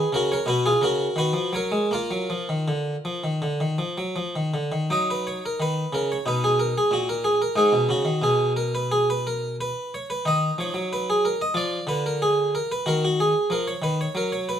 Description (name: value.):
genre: classical, baroque-style suite movement for harpsichord.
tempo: 77-94 BPM.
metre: 4/4.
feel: rubato.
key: Eb minor.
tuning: A4 = 439 Hz.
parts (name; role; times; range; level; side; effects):
harpsichord; solo; 0.0-14.6 s; Ab2 to Eb5; -21 LUFS; equal; none.
room: light reverb.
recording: minimal, uncompressed stereo recording.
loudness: -21 LUFS.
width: side -9 dB against mid.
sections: 0.0-4.9 A section; 4.9-14.6 A section.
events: none.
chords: 0.5 B5; 1.9 Bb; 4.9 Ebm/Gb; 6.2 B; 7.5 Abm; 10.2 Ebm; 11.6 Ddim7; 12.8 Ebm.